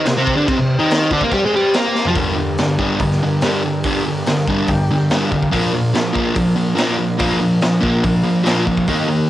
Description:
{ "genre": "garage rock duo or trio", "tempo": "143 BPM", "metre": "4/4", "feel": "straight", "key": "G minor", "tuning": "A4 = 440 Hz", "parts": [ { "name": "combo organ", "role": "sustained chords", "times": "0.0-9.3 s", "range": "C4 to A5", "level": "-26 LUFS", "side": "left 1 dB", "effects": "wide subtle chorus, cassette tape" }, { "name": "fuzz guitar", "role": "riff", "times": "0.0-9.3 s", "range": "G2 to Bb4", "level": "-16 LUFS", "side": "equal", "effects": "distortion, cassette tape" }, { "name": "raw garage drum kit", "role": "drums", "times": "0.1-9.0 s", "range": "crash cymbal, hi-hat, kick drum, snare drum, toms", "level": "-22 LUFS", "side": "equal", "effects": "cassette tape" } ], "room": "light reverb, small room reverb", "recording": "home recording on cassette", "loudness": "-14 LUFS", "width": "side -14 dB against mid", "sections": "0.0-2.2 A section; 2.2-9.3 B section", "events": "drum fill 1.9; transistor combo organ fill 4.3-5.5", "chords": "0.0 C5; 2.2 Gm; 5.5 Bb", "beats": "0.05 | 0.47 0.89 1.31 1.73 | 2.15 2.58 3.00 3.42 | 3.84 4.26 4.68 5.10 | 5.52 5.94 6.36 6.78 | 7.20 7.62 8.04 8.46 | 8.88" }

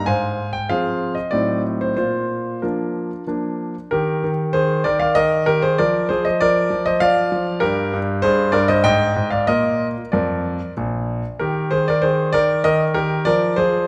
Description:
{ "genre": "classical-period piano sonatina", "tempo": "96 BPM", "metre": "3/4", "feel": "rubato", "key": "Eb major", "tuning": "A4 = 442 Hz", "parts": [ { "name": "clear concert grand piano", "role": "solo", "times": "0.0-13.9 s", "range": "Bb1 to Ab5", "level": "-19 LUFS", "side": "equal", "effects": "none" } ], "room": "moderate recital hall reverb, RT60 1.6 s", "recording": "none", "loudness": "-19 LUFS", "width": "mono", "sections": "0.0-3.9 A section; 3.9-13.9 B section", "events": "none", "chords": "0.1 Fm/Ab; 1.3 Adim7; 2.0 Bb; 3.9 Eb; 5.8 Bb/F; 7.6 Gmadd11; 8.9 Fm13/Ab; 9.5 Bb; 11.4 Eb; 13.3 Bb7/F", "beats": "| 0.07 0.70 1.33 | 1.97 2.63 3.27 | 3.92 4.54 5.17 | 5.79 6.40 7.01 | 7.62 8.23 8.85 | 9.48 10.13 10.76 | 11.40 12.03 12.64 | 13.27" }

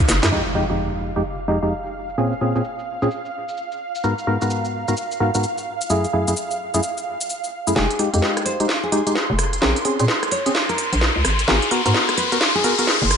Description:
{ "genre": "UK garage, two-step garage", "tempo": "129 BPM", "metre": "4/4", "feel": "swing 62% on 16ths", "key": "F minor", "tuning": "A4 = 439 Hz", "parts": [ { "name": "ethereal airy pad", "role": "sustained chords", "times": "0.0-13.2 s", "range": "F5 to C6", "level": "-28 LUFS", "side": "right 3 dB", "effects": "ensemble chorus, built-in reverb, tremolo" }, { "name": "hollow knocking FM bass", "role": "bass", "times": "0.0-0.3, 7.8-13.2 s", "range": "F1 to Bb2", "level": "-20 LUFS", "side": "equal", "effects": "none" }, { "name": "garage drum kit", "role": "drums", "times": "0.0-13.2 s", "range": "cabasa, hi-hat, rim click, snare drum", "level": "-22 LUFS", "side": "equal", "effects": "high-pass filter on hats, low-pass filter on hats, high-pass filter on perc, low-pass filter on perc, high-pass filter on snare, low-pass filter on snare, high-pass filter on room, low-pass filter on room" }, { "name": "percussive organ stab", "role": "stabs", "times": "0.2-12.9 s", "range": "F2 to Bb4", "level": "-22 LUFS", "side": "equal", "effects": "lush chorus, dub echo" }, { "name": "impact and riser", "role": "sound effects", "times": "0.3-2.2, 9.4-13.2 s", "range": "none", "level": "-25 LUFS", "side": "left 3 dB", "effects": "none" }, { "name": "nylon-string guitar", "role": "melody", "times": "7.8-13.2 s", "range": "Ab4 to Db5", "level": "-27 LUFS", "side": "equal", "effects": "dub echo" } ], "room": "moderate lush hall reverb, RT60 2.0 s", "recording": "nothing above 10.7 kHz", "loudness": "-18 LUFS", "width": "side -7 dB against mid", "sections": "0.3-7.8 A section; 7.8-13.2 B section", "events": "drum fill 0.1, 7.8-13.2; band accent 0.2; impact 0.3-2.2; filter sweep on drum 0.3-7.8; build-up 7.8-13.2; filter sweep on synth stab 7.8-13.2; riser 9.4-13.2", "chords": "0.3 Fm7; 2.2 Bbm7; 3.8 Abm7; 5.7 Gbm7; 7.8 Fm7; 9.6 Bbm7; 11.2 Abm7", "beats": "| 0.32 0.78 1.25 1.71 | 2.18 2.64 3.11 3.57 | 4.04 4.50 4.97 5.43 | 5.90 6.36 6.83 7.29 | 7.76 8.22 8.69 9.15 | 9.62 10.09 10.55 11.02 | 11.48 11.95 12.41 12.88" }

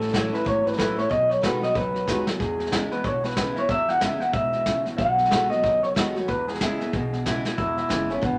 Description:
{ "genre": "rockabilly", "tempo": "185 BPM", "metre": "4/4", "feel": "swing 60% on 8ths", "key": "E major", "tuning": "A4 = 441 Hz", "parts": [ { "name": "electric guitar through a small old amp", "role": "melody", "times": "0.0-8.4 s", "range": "B3 to F#5", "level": "-26 LUFS", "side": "equal", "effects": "none" }, { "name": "picked acoustic archtop guitar", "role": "accompaniment", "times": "0.0-8.4 s", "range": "E2 to F#4", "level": "-33 LUFS", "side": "equal", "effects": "none" }, { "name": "electric guitar through a small old amp", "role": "riff", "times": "0.0-8.4 s", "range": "E2 to G#3", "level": "-35 LUFS", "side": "equal", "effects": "none" }, { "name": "upright bass", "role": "bass", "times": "0.0-8.4 s", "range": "E1 to E2", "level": "-38 LUFS", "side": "equal", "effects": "none" }, { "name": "vintage brush drum kit", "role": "drums", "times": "0.0-8.3 s", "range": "hi-hat, kick drum, snare drum", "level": "-31 LUFS", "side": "equal", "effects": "none" } ], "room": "moderate club reverb, RT60 0.6 s", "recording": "none", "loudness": "-24 LUFS", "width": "mono", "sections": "0.0-7.6 A section", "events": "drum fill 2.1-2.4, 7.4", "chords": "0.0 A; 1.1 B7; 2.4 E; 5.0 B7; 6.3 E", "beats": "0.13 0.45 0.78 | 1.10 1.43 1.75 2.07 | 2.40 2.72 3.04 3.37 | 3.69 4.02 4.34 4.66 | 4.99 5.31 5.63 5.96 | 6.28 6.61 6.93 7.25 | 7.58 7.90 8.22" }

